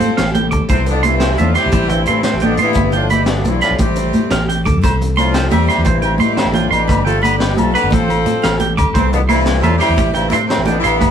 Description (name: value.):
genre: highlife guitar band.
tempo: 116 BPM (dotted quarters).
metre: 12/8.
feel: straight.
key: C major.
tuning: A4 = 440 Hz.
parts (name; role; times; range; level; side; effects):
warm horn section; melody; 0.0-11.1 s; C3 to C5; -19 LUFS; left 1 dB; none.
trombone with cup mute; second line; 0.0-11.1 s; E2 to F3; -25 LUFS; left 3 dB; none.
picked steel-string acoustic guitar; accompaniment; 0.0-11.1 s; A2 to D5; -27 LUFS; left 3 dB; none.
fingered electric bass; bass; 0.0-11.1 s; G1 to A2; -18 LUFS; equal; none.
crunchy breakbeat drum kit; drums; 0.0-11.1 s; hi-hat, kick drum, snare drum; -20 LUFS; equal; none.
congas; percussion; 0.0-11.1 s; none; -21 LUFS; right 1 dB; none.
twangy electric guitar; arpeggios; 0.2-11.1 s; B4 to D6; -19 LUFS; right 6 dB; none.
agogo bells; percussion; 4.8-11.1 s; none; -24 LUFS; left 3 dB; none.
room: moderate studio reverb, RT60 0.6 s.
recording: band playing live in one room.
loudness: -12 LUFS.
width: side -8 dB against mid.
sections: 0.0-11.1 A section.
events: drum fill 4.3-4.8.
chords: 0.0 Fadd9/A; 0.7 C6; 1.7 Am7; 2.8 G; 3.8 Fadd9/A (rootless); 4.8 C6; 5.9 Am7; 6.9 G; 7.9 Fadd9/A; 9.0 C6; 10.0 Am7.